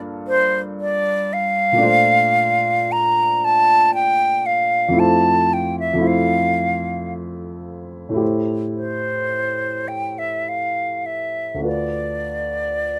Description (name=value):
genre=classical, impressionist duo for flute and grand piano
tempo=50-58 BPM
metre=3/4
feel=rubato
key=unclear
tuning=A4 = 440 Hz
part: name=warm baby grand piano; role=accompaniment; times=0.0-13.0 s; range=D2 to C5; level=-25 LUFS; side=equal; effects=none
part: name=bright silver concert flute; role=melody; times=0.3-13.0 s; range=C5 to Bb5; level=-20 LUFS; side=equal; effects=none
room=little or no reverb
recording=close, detailed microphones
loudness=-19 LUFS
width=mono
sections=0.0-13.0 A section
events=none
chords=0.0 Gm9; 1.8 Bbmaj9; 5.0 Fmaj7; 8.2 Am7; 11.7 Dm6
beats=0.79 | 1.84 2.88 3.93 | 4.99 6.06 7.12 | 8.21 9.31 10.47 | 11.66 12.85